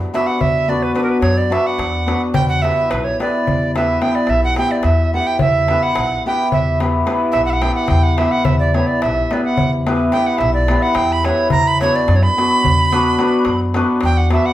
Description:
balkan folk, Balkan wedding band; 216 BPM (eighths); 11/8; straight; E minor; A4 = 440 Hz
darbuka; percussion; 0.0-14.5 s; -23 LUFS; left 1 dB
bright tenor recorder; second line; 0.1-14.5 s; A#4 to B5; -18 LUFS; right 3 dB
cimbalom; accompaniment; 0.1-14.5 s; B3 to B4; -18 LUFS; left 2 dB
upright bass; bass; 0.4-14.4 s; B1 to F#2; -20 LUFS; equal
moderate large studio reverb, RT60 0.8 s; band playing live in one room; -14 LUFS; side -13 dB against mid
0.0-14.5 A section
recorder solo 0.0-14.5
0.0 Bm/E; 2.3 Em; 11.5 Bm/E

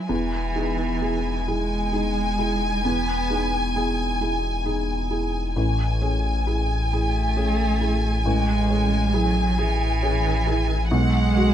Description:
neoclassical piano and strings; 44 BPM (dotted quarters); 6/8; rubato; E major; A4 = 441 Hz
rich studio violin section; melody; 0.0-11.5 s; F#5 to G#5; -27 LUFS; left 1 dB
warm cello; second line; 0.0-11.5 s; E3 to B3; -26 LUFS; right 4 dB
felt-muted upright piano; accompaniment; 0.0-11.5 s; A1 to G#4; -26 LUFS; equal
saturated sub bass; bass; 0.1-11.5 s; E1 to B1; -25 LUFS; left 1 dB
light reverb; minimal, uncompressed stereo recording; -20 LUFS; side -10 dB against mid
0.1-11.5 A section
0.1 Emaj7; 5.6 Amaj7; 10.9 G#m7/B

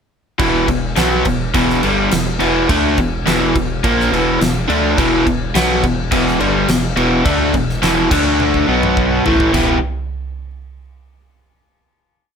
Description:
blues rock power trio and southern rock; 105 BPM; 4/4; straight; E minor; A4 = 441 Hz
overdriven electric guitar; riff; 0.4-9.8 s; E2 to G4; -14 LUFS; equal
gritty driven synth bass; bass; 0.4-9.8 s; E1 to D2; -22 LUFS; equal
huge arena drum kit; drums; 0.4-9.7 s; crash cymbal, kick drum, snare drum, splash cymbal, toms; -20 LUFS; equal
moderate club reverb, RT60 0.8 s; -13 LUFS; side -7 dB against mid
0.4-9.5 riff; 9.5-11.8 final chord
drum fill 8.4-9.5
0.4 Em; 8.1 D5; 8.7 B5; 9.3 A5; 9.5 N.C.

